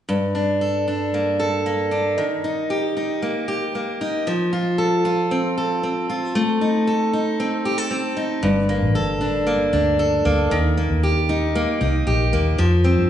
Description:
pop; 115 BPM; 4/4; straight; G minor; A4 = 442 Hz
picked steel-string acoustic guitar; accompaniment; 0.1-13.1 s; G2 to A4; -19 LUFS; equal
vintage muted fingered electric bass; bass; 8.4-13.1 s; G1 to G2; -21 LUFS; equal
wet recital hall reverb, RT60 1.8 s; recorded in a church or concert hall, nothing above 10.7 kHz; -18 LUFS; side -10 dB against mid
0.1-8.4 A section; 8.4-13.1 B section
0.1 Gmadd9; 2.2 Eb; 4.3 F; 6.4 Adim; 8.4 Gmadd9; 10.5 Eb; 12.6 F5

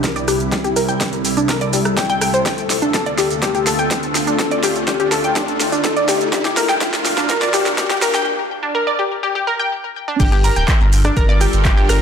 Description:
progressive house; 124 BPM; 4/4; straight; G dorian; A4 = 441 Hz
evolving wavetable pad; sustained chords; 0.0-12.0 s; C2 to F5; -23 LUFS; equal; phaser, built-in reverb, sidechain pumping
analog pluck; arpeggios; 0.0-12.0 s; G3 to G6; -18 LUFS; left 1 dB; chorus, cassette tape, sidechain pumping, ping-pong delay
deep house drum kit; drums; 0.0-12.0 s; crash cymbal, handclaps, hi-hat, ride cymbal, rim click, shaker, snare drum; -22 LUFS; right 1 dB; overdrive, high-pass filter on snare, high-pass filter on hats, high-pass filter on perc, high-pass filter on cymbals
electronic kick drum; drums; 0.0-11.7 s; -20 LUFS; equal; overdrive, high-pass filter on kick
riser; sound effects; 0.1-8.3 s; -26 LUFS; right 1 dB
round analog bass; bass; 10.2-12.0 s; D1 to G1; -17 LUFS; equal; sidechain pumping
moderate digital room reverb, RT60 1.1 s; high-pass filter; -15 LUFS; side -7 dB against mid
0.0-10.2 A section; 10.2-12.0 B section
build-up 0.0-10.2; drum fill 0.0-8.3; filter sweep on synth pluck 0.0-10.2; filter sweep on ambient pad 0.0-10.2; riser 0.1-8.3; break 8.3-10.2; drop 10.2-12.0
0.0 C; 2.5 Dm; 6.3 Bb; 10.2 Gm7

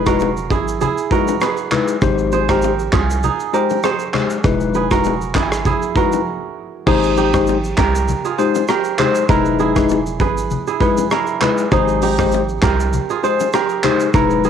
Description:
afrobeats; 99 BPM; 4/4; swing 55% on 16ths; A4 = 440 Hz
bell-like tine electric piano; accompaniment; 0.0-14.5 s; G#3 to C5; -18 LUFS; left 8 dB; lush chorus, cassette tape
kora; riff; 0.0-14.5 s; Eb4 to C5; -20 LUFS; right 10 dB; cassette tape, analog delay
warm 808-style bass; bass; 0.0-14.5 s; E1 to C2; -21 LUFS; right 1 dB
big rock drum kit; drums; 0.1-14.5 s; crash cymbal, handclaps, hi-hat, kick drum, rim click, shaker; -21 LUFS; right 1 dB; cassette tape
bongos and congas; percussion; 0.1-14.5 s; -25 LUFS; left 8 dB
light reverb, studio reverb; home recording on cassette; -14 LUFS; side -8 dB against mid
0.0-6.9 A section; 6.9-14.5 B section
break 6.3-6.9
0.0 Emaj7; 2.0 Abmaj7; 4.4 Emaj7; 6.9 Abmaj7; 9.3 Emaj7; 11.7 Abmaj7

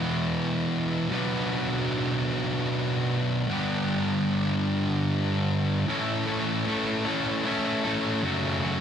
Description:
rock; 50 BPM (dotted quarters); 6/8; straight; A4 = 440 Hz
thick fuzz guitar; solo; 0.0-8.8 s; E2 to B4; -24 LUFS; equal; distortion
moderate studio reverb, RT60 0.8 s; -24 LUFS; side -8 dB against mid
0.0-5.9 A section; 5.9-8.8 B section
0.0 E; 1.1 Bm; 3.5 G; 5.9 A; 8.2 F#m

